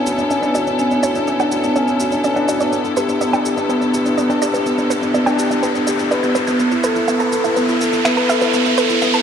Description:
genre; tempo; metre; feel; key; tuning
piano and strings electronica; 124 BPM; 4/4; straight; unclear; A4 = 444 Hz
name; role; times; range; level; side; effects
warm studio string section; sustained chords; 0.0-9.2 s; B3 to A4; -22 LUFS; left 2 dB; none
felt-muted upright piano; riff; 0.0-9.2 s; B3 to B4; -17 LUFS; equal; tape echo
riser; sound effects; 1.9-9.2 s; none; -23 LUFS; right 1 dB; none
warm sub bass; bass; 0.1-8.9 s; D1 to D2; -41 LUFS; equal; none
electronic shaker and finger snaps; drums; 0.1-9.2 s; none; -29 LUFS; right 2 dB; small room ambience
wide unison pluck; arpeggios; 0.3-9.2 s; B4 to G6; -23 LUFS; right 3 dB; tape echo
room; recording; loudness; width
moderate lush hall reverb, RT60 1.8 s; high-pass filter; -15 LUFS; side -8 dB against mid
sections
0.0-9.2 A section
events
build-up 0.0-9.2; filter sweep on synth arpeggio sound 0.0-9.2; filter sweep 0.0-9.2; riser 1.9-9.2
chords
0.0 Dmaj7; 2.7 G; 6.6 Asus2

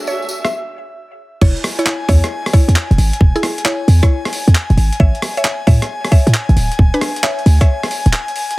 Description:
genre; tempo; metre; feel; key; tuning
UK garage, two-step garage; 134 BPM; 4/4; swing 67% on 16ths; E mixolydian; A4 = 443 Hz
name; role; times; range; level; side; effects
airy breathy pad; sustained chords; 0.0-8.6 s; E5 to G#5; -26 LUFS; left 2 dB; chorus, sidechain pumping
tambourine; percussion; 0.0-0.5 s; none; -29 LUFS; equal; none
warm studio string section; texture; 0.0-0.5 s; D4 to G#5; -26 LUFS; right 1 dB; sidechain pumping
mallet-like synth pluck; melody; 0.1-7.8 s; D4 to E5; -22 LUFS; left 1 dB; chorus, tape echo
breakbeat sampler-style drum kit; drums; 0.4-8.6 s; crash cymbal, handclaps, hi-hat, rim click; -20 LUFS; equal; overdrive
short 808-style bass; bass; 1.4-8.1 s; D1 to A2; -11 LUFS; equal; none
electronic kick drum; drums; 1.4-7.7 s; none; -10 LUFS; equal; overdrive
room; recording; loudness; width
digital ambience; heavily compressed radio sound; -12 LUFS; side -20 dB against mid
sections
0.0-1.4 A section; 1.4-8.6 B section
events
filter sweep on analog synth pad 0.0-1.4; break 0.5-1.4; drop 1.4-8.6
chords
0.0 Dmaj9#11; 1.4 E; 5.0 Amaj7; 6.6 E7/D (rootless)

